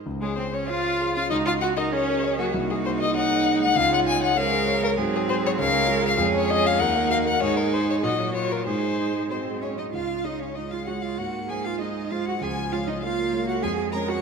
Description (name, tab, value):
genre	quick classical-period movement for piano quintet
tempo	98 BPM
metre	2/4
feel	straight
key	Db major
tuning	A4 = 439 Hz
part	dark grand piano	accompaniment	0.0-14.2 s	C2 to Eb5	-29 LUFS	equal	none
part	warm violin	melody	0.2-14.2 s	Gb4 to Bb5	-26 LUFS	left 6 dB	none
part	rich violin	second line	0.2-14.2 s	Ab3 to Bb5	-30 LUFS	left 1 dB	none
part	rich viola	accompaniment	0.2-14.2 s	F3 to Gb4	-30 LUFS	right 5 dB	none
part	rich cello	second line	0.7-14.2 s	C4 to Bb4	-29 LUFS	right 6 dB	none
room	wet scoring stage reverb, RT60 1.6 s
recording	none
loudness	-21 LUFS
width	side -5 dB against mid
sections	0.1-9.9 A section; 9.9-14.2 B section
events	none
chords	0.1 Db; 1.3 Ebm7/Db; 2.5 Ab7/C; 3.8 Db; 5.0 Ab7; 5.6 Db; 6.2 Db/F; 6.8 Ebm; 7.4 Ab5; 8.0 Gb/Bb; 8.7 Ab; 9.9 Db; 11.2 Ab; 12.4 Db; 13.6 Db/F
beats	| 0.05 0.68 | 1.30 1.92 | 2.53 3.14 | 3.75 4.37 | 4.98 5.59 | 6.20 6.81 | 7.42 8.04 | 8.67 9.30 | 9.94 10.56 | 11.18 11.80 | 12.41 13.02 | 13.63